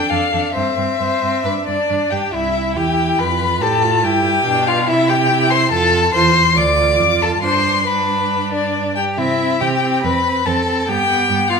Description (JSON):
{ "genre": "quick classical-period movement for string quartet", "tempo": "140 BPM", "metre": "4/4", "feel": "rubato", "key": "C major", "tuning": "A4 = 441 Hz", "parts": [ { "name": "rich violin", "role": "melody", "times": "0.0-11.6 s", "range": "D5 to D6", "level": "-17 LUFS", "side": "left 5 dB", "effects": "none" }, { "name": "rich violin", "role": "second line", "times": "0.0-11.6 s", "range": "D4 to D5", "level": "-20 LUFS", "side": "left 1 dB", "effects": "none" }, { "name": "rich viola", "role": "accompaniment", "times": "0.0-11.6 s", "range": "B3 to G4", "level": "-22 LUFS", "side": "right 4 dB", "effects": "none" }, { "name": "rich cello", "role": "bass", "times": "0.1-11.6 s", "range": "C2 to C3", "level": "-22 LUFS", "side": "right 6 dB", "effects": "none" } ], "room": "wet recital hall reverb, RT60 1.5 s", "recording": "minimal, uncompressed stereo recording", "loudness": "-14 LUFS", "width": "side -5 dB against mid", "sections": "0.0-2.3 A section; 2.3-11.6 B section", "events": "none", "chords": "0.0 Dm/F; 0.6 C/G; 1.4 G5; 2.3 C; 3.2 F; 4.0 G; 4.9 C; 5.7 F; 6.6 Dm; 7.4 G; 9.2 C; 10.0 F; 10.9 G" }